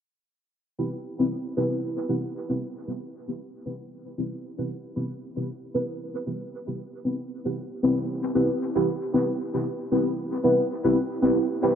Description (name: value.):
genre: techno.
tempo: 115 BPM.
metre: 4/4.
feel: swing 56% on 16ths.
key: unclear.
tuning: A4 = 439 Hz.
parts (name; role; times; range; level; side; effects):
deep mellow chord stab; stabs; 0.8-11.8 s; C4 to B4; -25 LUFS; equal; chorus, phaser, dub echo.
room: wet plate reverb, RT60 3.2 s.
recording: dreamy mix soaked in reverb.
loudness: -25 LUFS.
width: side -8 dB against mid.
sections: 0.8-11.8 A section.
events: filter sweep on synth stab 0.8-11.8.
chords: 0.8 Cmaj7.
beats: | 0.79 1.31 1.83 2.35 | 2.87 3.40 3.92 4.44 | 4.96 5.48 6.00 6.53 | 7.05 7.57 8.09 8.61 | 9.13 9.66 10.18 10.70 | 11.22 11.74.